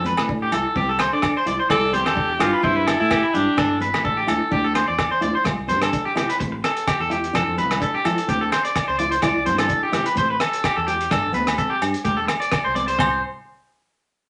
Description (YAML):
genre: highlife guitar band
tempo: 128 BPM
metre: 4/4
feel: swing 53% on 16ths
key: C major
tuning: A4 = 441 Hz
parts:
  - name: bright alto saxophone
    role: melody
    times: 0.0-3.8 s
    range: D4 to A4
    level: -23 LUFS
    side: equal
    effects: none
  - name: nylon-string guitar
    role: accompaniment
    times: 0.0-13.1 s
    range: A3 to G4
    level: -30 LUFS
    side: equal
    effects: none
  - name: electric guitar at the edge of break-up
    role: arpeggios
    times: 0.0-13.2 s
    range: E4 to D5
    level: -24 LUFS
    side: equal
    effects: none
  - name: modern bright fingered electric bass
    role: bass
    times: 0.0-13.2 s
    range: E1 to F3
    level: -30 LUFS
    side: equal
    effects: none
  - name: cloth-damped thuddy drum kit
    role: drums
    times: 0.1-13.1 s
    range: hi-hat, kick drum, rim click, toms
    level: -29 LUFS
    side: equal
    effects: none
  - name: agogo bells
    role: percussion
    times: 0.2-13.1 s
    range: none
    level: -30 LUFS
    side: equal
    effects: none
room: wet studio reverb, RT60 0.6 s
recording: nothing above 10.9 kHz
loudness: -21 LUFS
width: mono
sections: 0.0-5.5 A section; 5.5-13.0 B section; 13.0-14.3 C section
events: none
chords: 0.0 F6 (rootless); 1.7 C; 3.6 Gsus2; 5.5 C; 7.3 F6; 9.2 C; 11.1 Gsus2; 13.0 N.C.